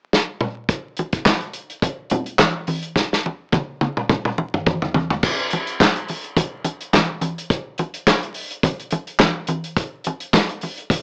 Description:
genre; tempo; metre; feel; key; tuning
disco; 106 BPM; 4/4; swing 56% on 16ths; none; none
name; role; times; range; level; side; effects
warm soul drum kit; drums; 0.1-11.0 s; crash cymbal, handclaps, hi-hat, kick drum, snare drum, toms; -21 LUFS; equal; cassette tape
congas; percussion; 1.0-11.0 s; none; -27 LUFS; equal; none
room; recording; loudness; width
moderate studio reverb, RT60 0.5 s; home recording on cassette, vinyl crackle, small speaker sound; -21 LUFS; mono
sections
0.7-5.2 A section; 5.2-11.0 B section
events
drum fill 0.1-0.7, 3.0-5.2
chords
none

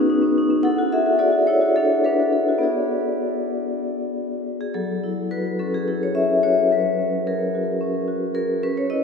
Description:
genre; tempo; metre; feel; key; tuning
classical, contemporary piece for solo vibraphone; 194-224 BPM (eighths); 7/8; rubato; F# minor; A4 = 437 Hz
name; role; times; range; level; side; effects
vibraphone with medium mallets; solo; 0.0-9.0 s; F#3 to F#5; -19 LUFS; left 1 dB; none
room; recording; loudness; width
wet cathedral reverb, RT60 5.0 s; heard from further back in the room; -19 LUFS; side -6 dB against mid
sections
0.0-4.8 A section; 4.8-9.0 B section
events
none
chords
0.0 Badd9; 0.7 E9sus4; 2.6 Bm6; 4.8 F#m7; 6.7 G#m11/F#

